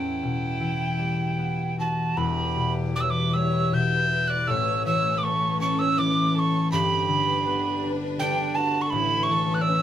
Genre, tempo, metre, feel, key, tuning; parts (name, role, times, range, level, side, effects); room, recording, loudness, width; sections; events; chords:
celtic folk, Celtic slow air; 80 BPM; 3/4; uneven beats, rubato; E dorian; A4 = 440 Hz
breathy mellow wooden whistle; melody; 0.0-9.8 s; G5 to G6; -25 LUFS; right 3 dB
clear fiddle; second line; 0.0-9.8 s; D4 to E5; -34 LUFS; left 4 dB
concert harp; accompaniment; 0.0-9.8 s; E1 to A4; -25 LUFS; left 2 dB
rich studio string section; sustained chords; 2.2-9.8 s; G3 to B4; -35 LUFS; equal
moderate small room reverb, RT60 0.5 s; band playing live in one room; -22 LUFS; side -10 dB against mid
0.0-2.2 A section; 2.2-9.8 B section
0.0 Em; 4.5 Aadd9; 6.7 G; 8.9 Aadd9